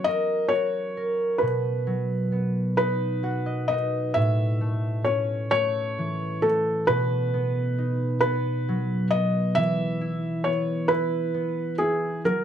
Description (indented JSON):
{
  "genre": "children's music, lullaby",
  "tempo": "44 BPM (dotted quarters)",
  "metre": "6/8",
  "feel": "rubato",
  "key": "B major",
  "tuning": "A4 = 440 Hz",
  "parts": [
    { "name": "felt-muted upright piano", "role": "melody", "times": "0.0-12.4 s", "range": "G#4 to E5", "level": "-25 LUFS", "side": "equal", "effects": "none" },
    { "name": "concert harp", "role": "accompaniment", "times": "0.0-12.4 s", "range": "A2 to F#5", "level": "-25 LUFS", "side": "equal", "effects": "none" }
  ],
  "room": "light reverb",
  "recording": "close, detailed microphones",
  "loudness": "-22 LUFS",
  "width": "side -9 dB against mid",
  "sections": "0.0-4.2 A section; 4.2-12.4 B section",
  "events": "harp fill 2.8-4.2",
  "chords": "0.0 F#; 1.4 B; 4.2 A; 6.9 B; 9.6 E5",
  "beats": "0.07 | 1.42 2.79 | 4.16 5.52 | 6.89 8.24 | 9.57 10.90 | 12.25"
}